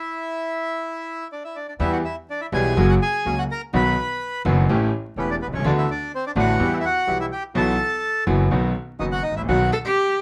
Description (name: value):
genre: tango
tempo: 125 BPM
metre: 4/4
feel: rubato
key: E minor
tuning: A4 = 439 Hz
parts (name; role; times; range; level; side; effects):
- bandoneon; melody; 0.0-9.7 s; B3 to B5; -27 LUFS; equal; none
- clear concert grand piano; accompaniment; 1.8-9.7 s; E1 to G4; -24 LUFS; equal; none
- bandoneon; stabs; 1.8-9.7 s; G3 to G4; -34 LUFS; equal; none
- upright bass; bass; 1.8-9.7 s; E1 to E2; -27 LUFS; equal; none
- bright cello; second line; 9.7-10.2 s; G4 to A4; -21 LUFS; equal; none
room: moderate club reverb, RT60 0.7 s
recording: vinyl crackle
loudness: -22 LUFS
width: mono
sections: 0.0-1.8 A section; 1.8-10.2 A section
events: stop 0.0-1.8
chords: 0.0 Dsus2; 1.8 Em; 2.8 F#; 3.7 B; 4.7 A7; 5.6 D6; 6.6 Em; 7.6 Bsus4; 8.5 B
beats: 0.34 0.82 1.31 | 1.80 2.29 2.77 3.25 | 3.73 4.21 4.69 5.17 | 5.65 6.12 6.60 7.08 | 7.55 8.03 8.51 8.99 | 9.48 9.96